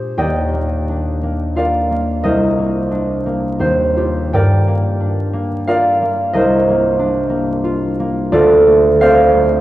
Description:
classical, solo harp piece; 88 BPM; 3/4; uneven beats, rubato; Eb major; A4 = 440 Hz
concert harp; solo; 0.0-9.6 s; C2 to G5; -13 LUFS; equal
wet cathedral reverb, RT60 4.5 s; worn, warbling old tape, cassette tape, vinyl crackle, warbly pitch drift; -13 LUFS; side -14 dB against mid
0.2-9.6 A section
0.2 Ebmaj9; 2.2 Cm9; 3.6 Ebadd9; 4.3 Gm7; 6.4 Cm11; 8.3 Dm7
| 0.17 0.88 1.57 | 2.25 2.93 3.62 | 4.34 5.03 5.69 | 6.35 7.00 7.66 | 8.34 9.01

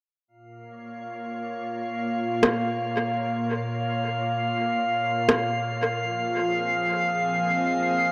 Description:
ambient dub; free time; Bb minor; A4 = 441 Hz
soft additive organ-like pad; sustained chords; 0.6-8.1 s; Bb2 to Eb5; -31 LUFS; equal; ensemble chorus, built-in reverb
drifting glass-harmonics texture; texture; 0.9-8.1 s; F5; -29 LUFS; equal; chorus, built-in reverb
electronic rim click; drums; 2.4-5.4 s; -26 LUFS; equal; overdrive, dub echo
moderate spring reverb, RT60 2.3 s; echo-heavy mix; -26 LUFS; mono
0.3-8.1 A section
fade-in on ambient pad 0.3-8.1
0.3 Bbm; 6.0 Fm7
free time

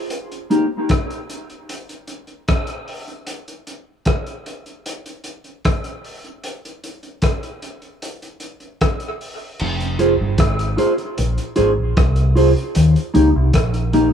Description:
dub reggae; 76 BPM; 4/4; straight; F minor; A4 = 440 Hz
crunchy breakbeat drum kit; drums; 0.1-14.1 s; crash cymbal, hi-hat, kick drum, rim click; -22 LUFS; equal
mellow electric guitar; accompaniment; 0.5-0.7, 10.0-14.1 s; Bb3 to C5; -18 LUFS; right 1 dB; wide subtle chorus, dub echo
deep dub fingered electric bass; bass; 9.6-14.1 s; F1 to Eb2; -17 LUFS; equal
light reverb, studio reverb; -16 LUFS; side -8 dB against mid
0.0-9.6 A section; 9.6-14.1 B section
filter sweep on clean electric guitar 12.8-14.1
0.1 Eb; 3.3 N.C.; 9.6 Fm; 12.8 Eb
| 0.10 0.90 1.69 2.48 | 3.27 4.06 4.85 5.64 | 6.43 7.22 8.02 8.80 | 9.60 10.38 11.17 11.96 | 12.75 13.54

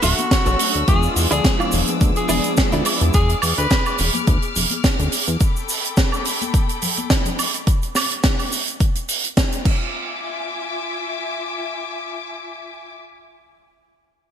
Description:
nu-disco, nu disco; 106 BPM; 4/4; swing 54% on 16ths; A4 = 440 Hz
warm tenor saxophone; melody; 0.0-4.0 s; F#4 to B4; -24 LUFS; left 1 dB; ping-pong delay
warm studio string section; sustained chords; 0.0-13.0 s; F4 to F6; -28 LUFS; left 4 dB; sidechain pumping
direct-recorded clean electric guitar; riff; 0.0-3.1 s; D4 to F5; -27 LUFS; right 2 dB; ensemble chorus, digital delay
chorused synth bass; bass; 0.0-5.4 s; D1 to E2; -20 LUFS; equal
tight funk drum kit; drums; 0.0-9.8 s; crash cymbal, hi-hat, shaker, snare drum, woodblock; -21 LUFS; right 2 dB; gated reverb
congas and tube shaker; percussion; 0.0-7.6 s; -31 LUFS; left 5 dB
electronic kick drum; drums; 0.3-9.8 s; -18 LUFS; equal; overdrive
mellow synth brass; accompaniment; 0.6-3.1 s; F3 to F#4; -26 LUFS; left 1 dB; chorus, sidechain pumping, digital delay
light reverb, small room ambience; bright 1980s-style digital production; -17 LUFS; side -9 dB against mid
0.0-9.9 A section; 9.9-12.2 B section
drop 0.0-9.9
0.0 Dmaj7; 0.9 E7b9; 5.4 A9sus4; 9.7 E7b9
0.31 | 0.88 1.45 2.01 2.58 | 3.14 3.71 4.28 4.84 | 5.41 5.97 6.54 7.11 | 7.67 8.24 8.80 9.37 | 9.94 10.50 11.07 11.63

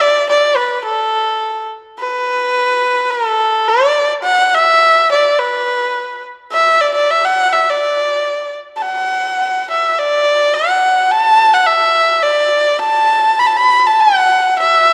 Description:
chinese traditional; 106 BPM; 2/4; rubato; D gong mode; A4 = 440 Hz
rich erhu; solo; 0.0-14.9 s; A4 to B5; -13 LUFS; equal
moderate recital hall reverb, RT60 1.9 s; dark, warm production; -13 LUFS; mono
0.0-8.8 A section; 8.8-14.9 B section
0.33 | 0.89 1.45 | 2.01 2.57 | 3.14 3.71 | 4.29 4.86 | 5.42 5.98 | 6.53 7.08 | 7.65 8.23 | 8.82 9.40 | 9.96 10.52 | 11.07 11.63 | 12.20 12.78 | 13.38 13.97 | 14.55

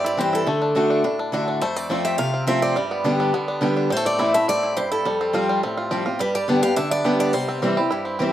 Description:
bluegrass; 210 BPM; 4/4; straight; A4 = 441 Hz
bluegrass banjo; melody; 0.0-8.3 s; G3 to G4; -26 LUFS; right 1 dB; slapback echo
picked steel-string acoustic guitar; melody; 0.0-8.2 s; A4 to F5; -24 LUFS; equal; slapback echo
picked acoustic archtop guitar; accompaniment; 0.0-8.3 s; F2 to G4; -22 LUFS; equal; slapback echo
little or no reverb; recorded outdoors, with no room sound; -19 LUFS; side -12 dB against mid
0.0-8.3 A section
0.5 D; 1.6 F; 2.8 G; 3.9 Am; 5.0 Fadd9; 6.2 G; 7.3 C
0.18 | 0.47 0.76 1.04 1.33 | 1.61 1.90 2.19 2.47 | 2.76 3.05 3.33 3.62 | 3.90 4.19 4.48 4.76 | 5.05 5.33 5.62 5.91 | 6.19 6.48 6.76 7.05 | 7.33 7.62 7.91 8.19

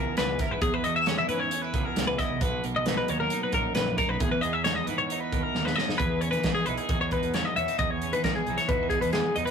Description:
math rock and midwest emo; 134 BPM; 4/4; straight; E lydian; A4 = 440 Hz
twelve-string electric guitar; accompaniment; 0.0-9.5 s; E2 to A#4; -32 LUFS; right 4 dB; spring reverb
twelve-string electric guitar; arpeggios; 0.0-9.5 s; G#4 to E5; -27 LUFS; left 3 dB
fuzz picked electric bass; bass; 0.0-9.5 s; A#1 to E3; -33 LUFS; right 1 dB; overdrive
modern studio drum kit; drums; 0.2-9.5 s; hi-hat, kick drum, snare drum; -30 LUFS; right 1 dB
wet small room ambience, RT60 0.5 s; rough rehearsal-room recording, warm saturation; -24 LUFS; side -6 dB against mid
0.0-6.0 A section; 6.0-9.5 B section
drum fill 5.6-6.0
0.0 E6; 2.4 Bmaj7; 4.2 Emaj7
0.17 | 0.62 1.07 1.52 1.97 | 2.41 2.86 3.31 3.76 | 4.21 4.65 5.10 5.55 | 6.00 6.45 6.90 7.35 | 7.79 8.24 8.69 9.14

